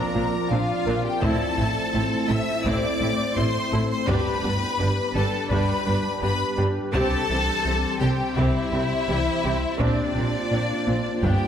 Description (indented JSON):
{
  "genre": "cinematic, hybrid orchestral and electronic film score",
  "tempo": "84 BPM",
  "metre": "4/4",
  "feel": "straight",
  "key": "unclear",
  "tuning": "A4 = 440 Hz",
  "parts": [
    { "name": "rich symphonic violin section", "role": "melody", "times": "0.0-11.5 s", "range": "D5 to E6", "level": "-29 LUFS", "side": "left 3 dB", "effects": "none" },
    { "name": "rich studio violin section", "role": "second line", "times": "0.0-11.5 s", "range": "D4 to E5", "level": "-29 LUFS", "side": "left 3 dB", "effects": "none" },
    { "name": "rich studio viola section", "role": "accompaniment", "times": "0.0-11.5 s", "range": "B3 to G4", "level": "-31 LUFS", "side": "equal", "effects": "none" },
    { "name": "warbly tape-like pad", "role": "sustained chords", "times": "0.0-11.5 s", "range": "F3 to D5", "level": "-29 LUFS", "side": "equal", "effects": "chorus, built-in reverb, phaser" },
    { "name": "rubbery square bass", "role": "riff", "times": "0.0-11.4 s", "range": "C2 to Bb3", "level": "-29 LUFS", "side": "right 1 dB", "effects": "none" },
    { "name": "soft round pluck", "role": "arpeggios", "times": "0.1-11.4 s", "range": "C3 to Bb4", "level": "-33 LUFS", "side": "left 1 dB", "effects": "chorus, tape echo" },
    { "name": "clear symphonic cello section", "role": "bass", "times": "0.2-11.3 s", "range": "G2 to C3", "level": "-31 LUFS", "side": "right 1 dB", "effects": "none" },
    { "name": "clear symphonic double bass section", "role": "bass", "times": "0.2-11.3 s", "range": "G1 to C2", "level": "-31 LUFS", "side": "right 2 dB", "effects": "none" },
    { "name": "solo taiko drums", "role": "drums", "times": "1.2-11.5 s", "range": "none", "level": "-32 LUFS", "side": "left 1 dB", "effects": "none" }
  ],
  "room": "wet scoring stage reverb, RT60 2.1 s",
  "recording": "none",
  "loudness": "-21 LUFS",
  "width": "side -9 dB against mid",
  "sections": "0.0-11.5 A section",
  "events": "none",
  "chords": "0.0 Bbadd9; 1.2 Am; 4.1 G; 6.9 C; 9.8 Bbadd9"
}